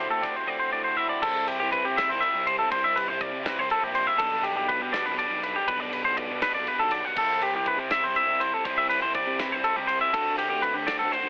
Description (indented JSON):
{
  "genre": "math rock and midwest emo",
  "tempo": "81 BPM (dotted quarters)",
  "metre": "6/8",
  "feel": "straight",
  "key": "unclear",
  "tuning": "A4 = 444 Hz",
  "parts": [
    { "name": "clean electric guitar", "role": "accompaniment", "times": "0.0-1.2 s", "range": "D2 to G4", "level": "-34 LUFS", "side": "right 1 dB", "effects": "spring reverb" },
    { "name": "twangy electric guitar", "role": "arpeggios", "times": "0.0-11.3 s", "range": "G4 to F#5", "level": "-24 LUFS", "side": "equal", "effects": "none" },
    { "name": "cranked stack guitar", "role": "riff", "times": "0.0-11.3 s", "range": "B2 to F#4", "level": "-32 LUFS", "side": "equal", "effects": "overdrive" },
    { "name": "fuzz picked electric bass", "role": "bass", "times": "0.0-11.3 s", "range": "Bb1 to D3", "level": "-37 LUFS", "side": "equal", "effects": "overdrive" },
    { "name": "loose indie drum kit", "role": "drums", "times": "0.2-11.2 s", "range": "crash cymbal, hi-hat, kick drum, ride cymbal, snare drum", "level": "-35 LUFS", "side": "equal", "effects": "none" }
  ],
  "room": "moderate studio reverb, RT60 0.5 s",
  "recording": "telephone sound",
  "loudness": "-23 LUFS",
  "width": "side -31 dB against mid",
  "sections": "0.0-1.2 A section; 1.2-11.3 B section",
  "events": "none",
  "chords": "0.0 D9; 1.2 C6; 4.2 G/B; 7.2 C6; 10.1 D7sus4"
}